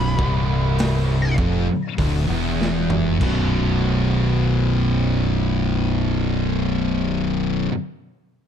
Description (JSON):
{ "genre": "stoner and doom metal", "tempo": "48 BPM", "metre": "4/4", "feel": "straight", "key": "unclear", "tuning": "A4 = 440 Hz", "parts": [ { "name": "fuzz lead guitar", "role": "melody", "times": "0.0-1.3 s", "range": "B5", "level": "-30 LUFS", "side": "left 1 dB", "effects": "wah, distortion, tape echo" }, { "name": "sludgy distorted guitar", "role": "riff", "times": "0.0-7.7 s", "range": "B1 to B2", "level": "-26 LUFS", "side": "left 1 dB", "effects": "overdrive" }, { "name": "thick fuzz guitar", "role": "riff", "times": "0.0-7.7 s", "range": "B1 to B2", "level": "-23 LUFS", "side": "left 8 dB", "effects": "distortion" }, { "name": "thick fuzz guitar", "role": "riff", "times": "0.0-7.7 s", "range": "B1 to B2", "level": "-23 LUFS", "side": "right 7 dB", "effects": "distortion" }, { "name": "fuzz fingered electric bass", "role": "bass", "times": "0.0-7.7 s", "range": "B0 to E#1", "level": "-26 LUFS", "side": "equal", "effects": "overdrive" }, { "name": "raw garage drum kit", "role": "drums", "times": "0.2-3.5 s", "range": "crash cymbal, hi-hat, kick drum, snare drum, toms", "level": "-26 LUFS", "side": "equal", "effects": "none" } ], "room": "light reverb, small room ambience", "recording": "dark, warm production", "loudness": "-18 LUFS", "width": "side -8 dB against mid", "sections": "0.0-3.2 A section; 3.2-8.2 B section", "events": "slowing down 0.0-3.2; lead electric guitar solo 0.0-3.2; drum fill 2.6-3.2", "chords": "0.0 Bm; 3.2 B5" }